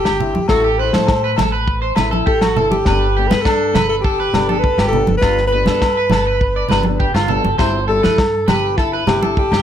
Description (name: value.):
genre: highlife guitar band.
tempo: 102 BPM.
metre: 4/4.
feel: straight.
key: G major.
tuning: A4 = 440 Hz.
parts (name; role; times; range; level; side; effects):
breathy alto saxophone; melody; 0.0-9.6 s; E4 to C5; -18 LUFS; left 1 dB; plate reverb.
electric guitar at the edge of break-up; arpeggios; 0.0-9.6 s; D4 to D5; -21 LUFS; right 3 dB; wide subtle chorus, tape echo.
upright bass; bass; 0.1-9.6 s; G1 to A2; -21 LUFS; equal; none.
warm soul drum kit; drums; 0.1-9.6 s; kick drum, snare drum; -20 LUFS; equal; none.
agogo bells; percussion; 0.1-9.6 s; none; -24 LUFS; left 2 dB; none.
fingerpicked acoustic archtop guitar; accompaniment; 0.2-9.4 s; E3 to A4; -25 LUFS; left 7 dB; none.
congas; percussion; 0.2-9.4 s; none; -22 LUFS; right 3 dB; none.
room: moderate studio reverb, RT60 0.8 s.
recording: none.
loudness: -13 LUFS.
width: side -9 dB against mid.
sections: 0.0-9.6 A section.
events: none.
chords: 0.5 Am; 2.9 Gadd9; 5.2 G7; 7.6 C/G.